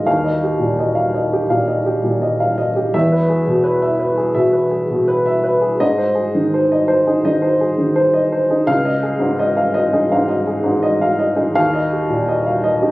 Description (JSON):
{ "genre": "neoclassical minimalist piano", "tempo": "84 BPM", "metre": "4/4", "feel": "rubato", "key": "unclear", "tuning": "A4 = 440 Hz", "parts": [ { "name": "dark upright piano", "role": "solo", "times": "0.0-12.9 s", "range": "Db2 to F5", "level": "-14 LUFS", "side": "equal", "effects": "none" } ], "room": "light reverb", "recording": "recorded on a phone in the room, studio reverb, compression", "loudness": "-14 LUFS", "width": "side -18 dB against mid", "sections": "0.0-12.9 A section", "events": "none", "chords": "0.1 Ebadd9; 2.9 E; 5.8 Ab; 8.7 Dbadd9; 11.6 Ebadd9", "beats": "| 0.06 0.77 1.50 2.22 | 2.94 3.65 4.37 5.08 | 5.80 6.52 7.24 7.96 | 8.68 9.39 10.12 10.84 | 11.56 12.29" }